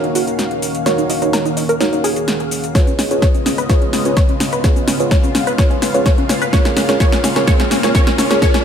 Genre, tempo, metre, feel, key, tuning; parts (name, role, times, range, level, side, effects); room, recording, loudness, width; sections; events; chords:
progressive house; 127 BPM; 4/4; straight; Eb minor; A4 = 440 Hz
lush unison pad; sustained chords; 0.0-8.6 s; Db3 to F5; -22 LUFS; equal; chorus, phaser, sidechain pumping
tight sequenced synth; arpeggios; 0.0-8.6 s; Db4 to Db5; -20 LUFS; left 1 dB; chorus, cassette tape, sidechain pumping, ping-pong delay
deep mellow chord stab; stabs; 0.0-8.6 s; Eb4 to Db5; -20 LUFS; right 2 dB; chorus, sidechain pumping, ping-pong delay
deep house drum kit; drums; 0.0-8.6 s; hi-hat, shaker, snare drum; -20 LUFS; equal; overdrive
electronic kick drum; drums; 2.7-8.5 s; -14 LUFS; equal; overdrive
riser; sound effects; 5.7-8.6 s; -28 LUFS; right 1 dB
moderate lush hall reverb, RT60 1.7 s; -13 LUFS; side -8 dB against mid
0.0-8.6 A section
build-up 0.0-8.6; drum fill 0.0-8.6; filter sweep on synth arpeggio sound 0.0-8.6; filter sweep on analog synth pad 0.0-8.6
0.0 Ebm7; 2.8 Db7; 6.5 Bbm7/Db